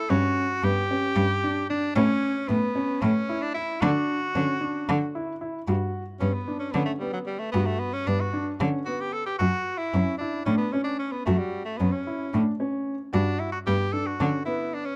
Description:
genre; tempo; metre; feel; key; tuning
progressive instrumental, band music in an uneven meter; 226 BPM (eighths); 7/8; straight; G lydian; A4 = 439 Hz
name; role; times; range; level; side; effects
clear tenor saxophone; melody; 0.0-15.0 s; F#3 to A4; -31 LUFS; equal; none
warm grand piano; arpeggios; 0.1-14.8 s; B3 to F#4; -32 LUFS; equal; slapback echo
rich cello; bass; 0.1-14.3 s; F#2 to D3; -28 LUFS; equal; none
room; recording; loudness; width
light reverb; dark, warm production; -26 LUFS; mono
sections
0.0-5.7 A section; 5.7-15.0 B section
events
tenor saxophone solo 5.7-15.0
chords
0.1 Gmaj7(no3); 2.0 Aadd9 (rootless); 3.8 Dadd9; 5.7 Gmaj7 (rootless); 9.4 Dmaj7/F#; 13.1 Gmaj7

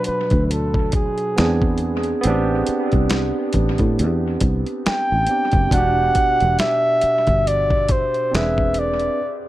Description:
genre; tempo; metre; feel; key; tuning
R&B, neo-soul; 69 BPM; 4/4; swing 58% on 16ths; E minor; A4 = 440 Hz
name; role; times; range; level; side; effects
dark flugelhorn; melody; 0.0-9.4 s; G#4 to G5; -20 LUFS; equal; dub echo
barky tine electric piano; accompaniment; 0.0-9.2 s; B2 to B4; -23 LUFS; right 2 dB; overdrive, dub echo
dusty soul sampler-style drum kit; drums; 0.0-9.2 s; hi-hat, kick drum, snare drum; -22 LUFS; equal; dub echo
fingered electric bass; bass; 0.1-9.1 s; E1 to A2; -21 LUFS; equal; none
room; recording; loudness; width
little or no reverb; echo-heavy mix; -16 LUFS; side -15 dB against mid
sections
0.0-9.5 A section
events
band accent 9.2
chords
0.0 Esus2 (rootless); 1.4 E7b13; 2.2 Am11; 5.7 Em9; 8.3 E7b13

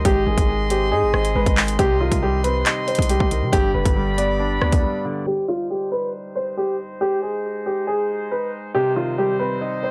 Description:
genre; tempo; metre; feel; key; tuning
hip hop, drill; 138 BPM; 4/4; half-time; C harmonic minor; A4 = 439 Hz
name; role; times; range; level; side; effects
dark concert grand piano; accompaniment; 0.0-5.3, 8.7-9.9 s; G2 to Eb4; -28 LUFS; equal; low-pass filter
clear brass ensemble; sustained chords; 0.0-9.9 s; G3 to C6; -32 LUFS; equal; low-pass filter
hard-hitting 808-style bass; bass; 0.0-4.8 s; F1 to C3; -26 LUFS; equal; none
dark upright piano; melody; 0.1-9.9 s; F4 to D5; -24 LUFS; equal; low-pass filter
drill drum kit; drums; 0.1-4.8 s; handclaps, hi-hat, kick drum, rim click; -22 LUFS; equal; none
room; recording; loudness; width
small room ambience; dry, gritty hardware recording; -21 LUFS; mono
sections
0.0-5.3 A section; 5.3-9.9 B section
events
break 4.8-5.3; filter sweep 5.3-9.9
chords
0.1 Ab; 1.8 Cm; 3.5 G; 5.3 Cm; 7.0 Ab; 8.7 Cm

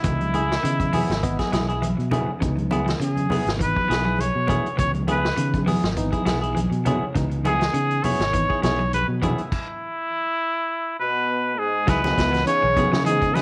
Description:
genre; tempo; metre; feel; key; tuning
afrobeat; 101 BPM; 4/4; swing 54% on 16ths; C# minor; A4 = 441 Hz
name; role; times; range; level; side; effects
clear trumpet; melody; 0.0-13.4 s; E4 to C#5; -26 LUFS; equal; none
barky reed electric piano; accompaniment; 0.0-13.4 s; E3 to G#5; -34 LUFS; equal; overdrive, fast tremolo
clean electric guitar; arpeggios; 0.0-13.4 s; C#3 to F#3; -33 LUFS; equal; spring reverb, tape echo
fingered electric bass; bass; 0.0-13.4 s; G#1 to C#3; -28 LUFS; equal; none
vintage drum kit; drums; 0.0-13.4 s; crash cymbal, hi-hat, kick drum, snare drum; -30 LUFS; equal; vintage 12-bit sampler grit
congas; percussion; 0.0-13.4 s; none; -30 LUFS; equal; none
semi-hollow electric guitar; stabs; 0.3-13.4 s; B3 to G#4; -31 LUFS; equal; harmonic tremolo
bright bass trombone; second line; 11.0-13.4 s; G#2 to C#3; -32 LUFS; equal; none
dark trombone; second line; 11.0-13.4 s; G#3 to C#4; -32 LUFS; equal; none
room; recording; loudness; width
light reverb, small room ambience; none; -22 LUFS; mono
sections
0.0-11.9 A section; 11.9-13.4 B section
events
reed electric piano fill 0.6-2.4, 6.3-7.1; stop 9.5-11.9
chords
0.0 C#m7

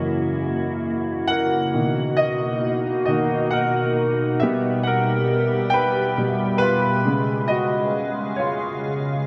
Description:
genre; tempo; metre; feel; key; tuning
six-eight pop ballad; 45 BPM (dotted quarters); 6/8; straight; B major; A4 = 440 Hz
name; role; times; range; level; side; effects
warm grand piano; accompaniment; 0.0-9.3 s; F#2 to G5; -24 LUFS; equal; analog chorus
glassy FM pad; sustained chords; 0.0-9.3 s; B2 to E#5; -26 LUFS; equal; ensemble chorus, built-in reverb
room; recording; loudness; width
wet huge ambient reverb, RT60 8.4 s; dreamy mix soaked in reverb; -22 LUFS; mono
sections
0.0-9.3 A section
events
grand piano solo 0.0-9.3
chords
0.0 F#7; 1.8 Bmaj7; 4.4 Em/B; 7.1 C#

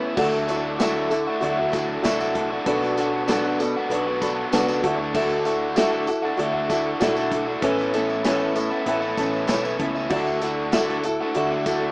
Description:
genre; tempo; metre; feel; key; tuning
folk rock and heartland rock; 97 BPM; 4/4; straight; D major; A4 = 440 Hz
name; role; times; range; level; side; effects
dark upright piano; accompaniment; 0.0-11.9 s; F#4 to B5; -29 LUFS; equal; none
picked steel-string acoustic guitar; accompaniment; 0.0-11.9 s; A2 to B4; -23 LUFS; equal; none
tonewheel organ; sustained chords; 0.0-11.9 s; A4 to E6; -34 LUFS; equal; none
biting overdriven guitar; riff; 0.0-11.9 s; A2 to F#4; -26 LUFS; equal; none
hollow-body short-scale picked electric bass; bass; 0.2-11.9 s; A1 to D2; -37 LUFS; equal; none
natural country drum kit; drums; 0.2-11.8 s; crash cymbal, hi-hat, kick drum, snare drum; -28 LUFS; equal; none
tambourine; percussion; 0.3-11.8 s; none; -38 LUFS; equal; none
room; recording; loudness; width
moderate studio reverb, RT60 0.5 s; rough home demo mix, small speaker sound; -20 LUFS; side -27 dB against mid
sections
0.2-11.9 A section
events
break 0.0; upright piano fill 3.9-5.1, 8.2-10.1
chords
0.2 Dadd9; 2.7 Bm7; 4.8 Dadd9; 7.6 Aadd9; 10.1 Dadd9

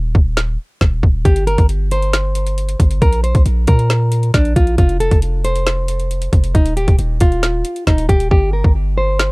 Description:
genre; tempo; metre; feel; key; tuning
hip hop, trap; 136 BPM; 4/4; half-time; G minor; A4 = 440 Hz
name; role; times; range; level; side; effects
hard-hitting 808-style bass; bass; 0.0-9.3 s; Eb1 to Bb2; -16 LUFS; equal; none
trap drum kit; drums; 0.1-9.3 s; hi-hat, kick drum, snare drum; -13 LUFS; equal; none
nylon-string guitar; melody; 1.3-9.3 s; D4 to C5; -20 LUFS; equal; low-pass filter, analog delay
room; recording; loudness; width
little or no reverb; dark, warm production; -13 LUFS; side -27 dB against mid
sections
0.0-9.3 A section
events
break 0.0-1.3; hi-hats muted 8.3-9.3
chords
0.0 N.C.; 1.3 Gsus4; 3.0 N.C.; 4.8 F5; 6.5 Ebadd9; 8.3 Gsus4

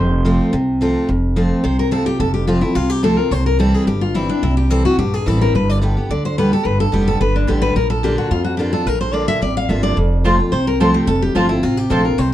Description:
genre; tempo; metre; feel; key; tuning
bluegrass; 216 BPM; 4/4; straight; F major; A4 = 440 Hz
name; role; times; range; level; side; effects
picked steel-string acoustic guitar; accompaniment; 0.0-12.3 s; F2 to G4; -18 LUFS; equal; none
mandolin; stabs; 0.0-0.5, 10.2-12.0 s; C4 to A5; -21 LUFS; equal; none
upright bass; bass; 0.0-12.3 s; F1 to F2; -19 LUFS; equal; none
picked steel-string acoustic guitar; melody; 1.6-12.3 s; D4 to F5; -20 LUFS; left 2 dB; slapback echo, plate reverb
room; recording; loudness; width
moderate studio reverb, RT60 0.5 s; dark, warm production; -14 LUFS; side -13 dB against mid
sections
0.0-1.1 A section; 1.1-12.3 B section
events
mandolin solo 0.0-1.1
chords
0.0 F; 3.3 C; 5.5 G; 7.8 Bb; 10.0 F

